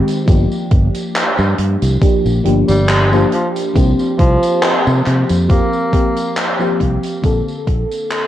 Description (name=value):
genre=vaporwave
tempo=69 BPM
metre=4/4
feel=swing 54% on 16ths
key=G minor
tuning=A4 = 439 Hz
part: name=FM electric piano with soft pad layer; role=accompaniment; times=0.0-8.3 s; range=D3 to A4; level=-18 LUFS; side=left 1 dB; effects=lush chorus, cassette tape, analog delay
part: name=open jazz drum kit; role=drums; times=0.1-8.3 s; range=handclaps, hi-hat, tambourine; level=-20 LUFS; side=equal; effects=gated reverb
part: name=fingered electric bass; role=bass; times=0.3-7.8 s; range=G1 to C3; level=-15 LUFS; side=equal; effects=none
part: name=electronic kick drum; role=drums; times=0.3-7.9 s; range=none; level=-15 LUFS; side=equal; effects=none
part: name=breathy tenor saxophone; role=melody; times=2.7-6.4 s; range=F3 to Bb3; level=-20 LUFS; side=right 1 dB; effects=vintage 12-bit sampler grit, tape echo
room=light reverb, small room reverb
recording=cassette tape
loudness=-12 LUFS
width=side -12 dB against mid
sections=0.0-8.3 A section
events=fade-out 4.9-8.3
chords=0.3 Gm7; 3.8 C7sus4; 7.2 Bbmaj9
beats=| 0.28 1.15 2.02 2.89 | 3.76 4.63 5.50 6.37 | 7.24 8.11